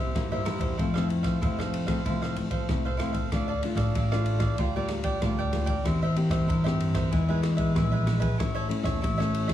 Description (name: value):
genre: samba and choro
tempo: 95 BPM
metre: 4/4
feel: straight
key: F major, D minor from 3.3 s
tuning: A4 = 435 Hz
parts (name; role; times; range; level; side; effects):
- cavaquinho; accompaniment; 0.0-9.5 s; D4 to G5; -33 LUFS; right 3 dB; none
- nylon-string guitar; accompaniment; 0.0-9.5 s; G2 to G4; -29 LUFS; left 2 dB; none
- upright bass; bass; 0.0-9.5 s; A1 to G2; -29 LUFS; equal; none
- open jazz drum kit; drums; 0.2-9.5 s; kick drum, ride cymbal, rim click; -30 LUFS; equal; none
room: light reverb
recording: heavily compressed radio sound, studio reverb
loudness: -24 LUFS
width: side -12 dB against mid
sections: 0.0-3.3 A section; 3.3-9.5 B section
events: none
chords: 0.0 C7; 0.8 Fmaj7; 3.3 Dm; 4.6 Gm7/D; 5.9 C7/E; 7.1 E; 8.4 A